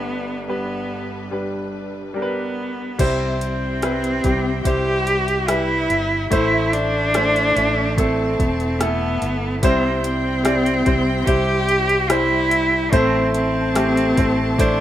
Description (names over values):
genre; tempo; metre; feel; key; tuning
pop ballad; 72 BPM; 4/4; straight; C major; A4 = 439 Hz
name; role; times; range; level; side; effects
rich cello; melody; 0.0-14.8 s; B3 to G4; -20 LUFS; equal; none
bright concert grand piano; accompaniment; 0.0-14.8 s; G1 to D5; -23 LUFS; equal; none
rich studio string section; sustained chords; 0.0-14.8 s; G2 to A5; -30 LUFS; equal; none
fretless electric bass; bass; 3.0-14.8 s; E1 to C2; -25 LUFS; equal; none
smooth R&B drum kit; drums; 3.0-14.8 s; crash cymbal, hi-hat, kick drum, rim click; -23 LUFS; equal; none
room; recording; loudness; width
light reverb, studio reverb; rough home demo mix; -17 LUFS; side -12 dB against mid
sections
0.0-3.0 A section; 3.0-14.8 B section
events
none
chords
0.0 G; 3.0 C; 6.3 Am; 9.6 C; 12.9 Am